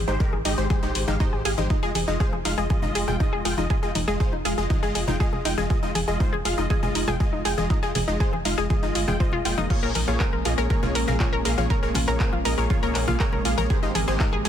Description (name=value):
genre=progressive house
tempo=120 BPM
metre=4/4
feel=straight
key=F minor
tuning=A4 = 439 Hz
part: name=analog pluck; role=arpeggios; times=0.0-14.5 s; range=Eb4 to C5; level=-28 LUFS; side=equal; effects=chorus, sidechain pumping, dub echo
part: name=round analog bass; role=bass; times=0.0-14.5 s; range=F1 to C2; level=-28 LUFS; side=equal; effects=sidechain pumping
part: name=supersaw stab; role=stabs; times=0.1-14.5 s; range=Ab2 to G5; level=-28 LUFS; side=left 1 dB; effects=sidechain pumping, dub echo
part: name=electronic kick drum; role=drums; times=0.2-14.3 s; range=none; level=-23 LUFS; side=equal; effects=none
part: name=congas and woodblock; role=percussion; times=0.3-14.5 s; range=none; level=-33 LUFS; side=left 2 dB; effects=sidechain pumping on perc
part: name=house drum kit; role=drums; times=0.5-14.5 s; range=crash cymbal, handclaps, hi-hat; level=-31 LUFS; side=left 2 dB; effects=none
part: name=airy breathy pad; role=sustained chords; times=9.7-14.5 s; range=Ab3 to G4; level=-32 LUFS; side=right 2 dB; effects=chorus, sidechain pumping
room=little or no reverb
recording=dense, heavily limited modern master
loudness=-21 LUFS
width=side -10 dB against mid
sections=0.0-14.5 A section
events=none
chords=0.0 Abmaj7; 1.7 Fm7; 9.7 Bbm7; 13.7 Abmaj7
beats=0.20 0.70 1.20 | 1.70 2.20 2.70 3.20 | 3.70 4.20 4.70 5.20 | 5.70 6.20 6.70 7.20 | 7.70 8.20 8.70 9.20 | 9.70 10.20 10.70 11.20 | 11.70 12.20 12.70 13.20 | 13.70 14.20